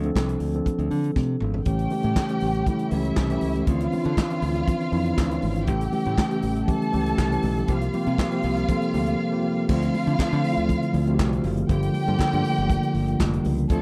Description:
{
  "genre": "disco",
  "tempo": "120 BPM",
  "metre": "4/4",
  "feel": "straight",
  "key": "D minor",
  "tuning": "A4 = 435 Hz",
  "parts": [
    { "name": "mellow tine electric piano", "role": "accompaniment", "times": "0.0-13.8 s", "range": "D3 to A4", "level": "-27 LUFS", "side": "equal", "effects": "none" },
    { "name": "modern bright fingered electric bass", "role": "bass", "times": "0.0-13.8 s", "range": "F1 to D3", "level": "-29 LUFS", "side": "equal", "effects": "none" },
    { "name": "warm soul drum kit", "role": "drums", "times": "0.0-13.8 s", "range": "crash cymbal, handclaps, hi-hat, kick drum, snare drum, toms", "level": "-28 LUFS", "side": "equal", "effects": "none" },
    { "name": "congas", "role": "percussion", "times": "0.2-13.8 s", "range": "none", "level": "-35 LUFS", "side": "equal", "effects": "none" },
    { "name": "warm studio string section", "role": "second line", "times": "1.6-13.8 s", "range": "E4 to A5", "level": "-33 LUFS", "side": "equal", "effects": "none" },
    { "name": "tonewheel organ", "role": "sustained chords", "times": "1.7-13.8 s", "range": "C3 to F4", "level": "-35 LUFS", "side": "equal", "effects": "chorus vibrato, slow rotary speaker" }
  ],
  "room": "light reverb",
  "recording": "none",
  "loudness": "-24 LUFS",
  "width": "mono",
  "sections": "0.0-1.7 A section; 1.7-9.7 B section; 9.7-13.8 C section",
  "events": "drum fill 1.2-1.7",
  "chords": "0.0 Dm7; 1.7 A7; 3.7 Dm9; 5.7 A7; 7.7 C7sus4; 9.7 Dm7; 11.7 Gm7"
}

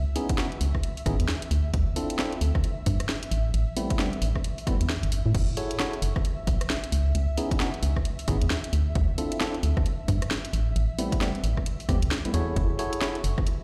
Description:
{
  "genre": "UK garage, two-step garage",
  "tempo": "133 BPM",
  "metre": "4/4",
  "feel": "swing 61% on 16ths",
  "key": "F# minor",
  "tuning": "A4 = 439 Hz",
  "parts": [
    { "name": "ethereal airy pad", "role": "sustained chords", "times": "0.0-13.6 s", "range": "E5", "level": "-44 LUFS", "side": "equal", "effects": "ensemble chorus, built-in reverb, sidechain pumping" },
    { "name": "organ-like FM bass", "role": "bass", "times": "0.0-13.4 s", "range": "F#1 to A2", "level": "-27 LUFS", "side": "equal", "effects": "none" },
    { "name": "tine electric piano", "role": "stabs", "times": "0.2-13.2 s", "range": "G3 to C#5", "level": "-34 LUFS", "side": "equal", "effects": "digital delay" },
    { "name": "garage drum kit", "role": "drums", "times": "0.2-13.6 s", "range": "crash cymbal, hi-hat, rim click, snare drum", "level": "-35 LUFS", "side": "equal", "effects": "overdrive" },
    { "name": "electronic kick drum", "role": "drums", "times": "0.3-13.4 s", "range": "none", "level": "-30 LUFS", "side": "equal", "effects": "none" }
  ],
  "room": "digital ambience",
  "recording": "played on a big sound system in a bare room, large studio reverb",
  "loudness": "-27 LUFS",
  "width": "mono",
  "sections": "0.0-13.6 A section",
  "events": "none",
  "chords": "0.0 C#m7; 1.5 Dm7; 3.3 Am7; 5.3 F#m7; 6.9 C#m7; 8.7 Dm7; 10.5 Am7; 12.6 F#m7"
}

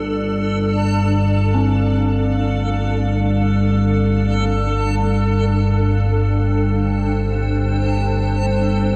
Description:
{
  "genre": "dark ambient drone",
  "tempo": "free time",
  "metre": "none",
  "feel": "none",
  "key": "unclear",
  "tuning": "A4 = 444 Hz",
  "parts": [
    { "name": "granular cloud pad", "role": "sustained chords", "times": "0.0-9.0 s", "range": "D4 to G5", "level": "-26 LUFS", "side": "equal", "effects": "built-in reverb" },
    { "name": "analog drone", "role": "drone", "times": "0.0-9.0 s", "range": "G1 to G2", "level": "-19 LUFS", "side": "equal", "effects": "chorus" },
    { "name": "backwards swelling texture", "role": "texture", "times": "0.0-9.0 s", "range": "A4", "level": "-29 LUFS", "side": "equal", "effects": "built-in reverb" },
    { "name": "dark detuned synth bell", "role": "arpeggios", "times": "1.5-9.0 s", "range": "C4", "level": "-30 LUFS", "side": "equal", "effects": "none" }
  ],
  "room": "moderate huge ambient reverb, RT60 8.7 s",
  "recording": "dark, warm production",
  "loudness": "-18 LUFS",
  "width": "mono",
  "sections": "0.0-9.0 A section",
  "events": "none",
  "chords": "0.0 Dm7"
}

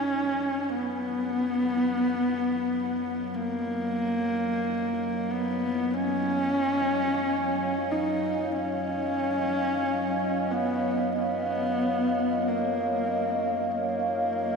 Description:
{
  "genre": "dark ambient drone",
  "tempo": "46 BPM",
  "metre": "4/4",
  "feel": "straight",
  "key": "Eb minor",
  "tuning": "A4 = 440 Hz",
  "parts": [
    { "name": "dark horsehead fiddle", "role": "melody", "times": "0.0-14.6 s", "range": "Bb3 to Eb4", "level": "-26 LUFS", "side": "left 1 dB", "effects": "ping-pong delay" },
    { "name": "dark analog pad", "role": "sustained chords", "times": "0.0-14.6 s", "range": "Gb3 to F5", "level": "-30 LUFS", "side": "right 1 dB", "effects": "chorus" }
  ],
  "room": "wet cathedral reverb, RT60 4.8 s",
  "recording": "cassette tape",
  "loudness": "-25 LUFS",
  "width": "side -5 dB against mid",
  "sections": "0.0-14.6 A section",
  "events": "fade-in on analog synth pad 0.0-14.6",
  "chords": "0.0 Ebmadd9"
}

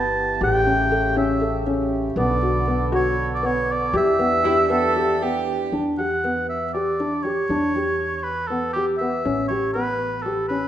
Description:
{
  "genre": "contemporary instrumental, chamber music in an uneven meter",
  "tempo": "239 BPM (eighths)",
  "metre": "7/8",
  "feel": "straight",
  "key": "E dorian",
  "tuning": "A4 = 440 Hz",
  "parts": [
    { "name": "warm oboe", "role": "melody", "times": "0.0-10.7 s", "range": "G4 to A5", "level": "-23 LUFS", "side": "equal", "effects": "none" },
    { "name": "pedal harmonium", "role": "sustained chords", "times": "0.0-5.7 s", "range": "C#3 to A4", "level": "-28 LUFS", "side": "right 1 dB", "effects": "none" },
    { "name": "felt-muted upright piano", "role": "arpeggios", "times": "0.0-10.7 s", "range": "B3 to A4", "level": "-23 LUFS", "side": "left 1 dB", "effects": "none" },
    { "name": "upright bass", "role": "bass", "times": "0.0-10.7 s", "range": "G1 to E2", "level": "-30 LUFS", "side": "right 1 dB", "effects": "none" },
    { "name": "clear cello", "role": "second line", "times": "4.4-5.7 s", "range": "E4 to A4", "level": "-26 LUFS", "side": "right 4 dB", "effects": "none" }
  ],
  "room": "wet scoring stage reverb, RT60 1.5 s",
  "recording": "recorded in a church or concert hall",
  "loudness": "-19 LUFS",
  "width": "side -11 dB against mid",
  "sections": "0.0-5.7 A section; 5.7-10.7 B section",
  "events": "none",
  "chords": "0.4 A7; 2.2 Bm7; 3.9 Em7; 9.2 A9"
}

